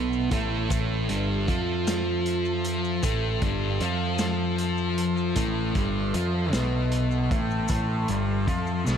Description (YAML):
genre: psychedelic rock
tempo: 52 BPM (dotted quarters)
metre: 6/8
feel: straight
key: A minor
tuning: A4 = 444 Hz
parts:
  - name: overdriven combo organ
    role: sustained chords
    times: 0.0-9.0 s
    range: A4 to C6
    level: -37 LUFS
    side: right 5 dB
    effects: lush chorus
  - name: thick fuzz guitar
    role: riff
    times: 0.0-9.0 s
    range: G2 to F4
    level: -26 LUFS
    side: equal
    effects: distortion, phaser
  - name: picked electric bass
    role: bass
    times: 0.0-9.0 s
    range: G1 to F2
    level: -29 LUFS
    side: equal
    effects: none
  - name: maracas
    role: percussion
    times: 0.1-9.0 s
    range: none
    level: -41 LUFS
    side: left 7 dB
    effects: none
  - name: vintage drum kit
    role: drums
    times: 0.3-9.0 s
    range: hi-hat, kick drum, snare drum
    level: -30 LUFS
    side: equal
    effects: none
room: small room ambience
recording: none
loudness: -23 LUFS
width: side -8 dB against mid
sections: 0.0-9.0 A section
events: none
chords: 0.0 Am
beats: | 0.71 1.87 | 3.04 4.21 | 5.37 6.54 | 7.70 8.87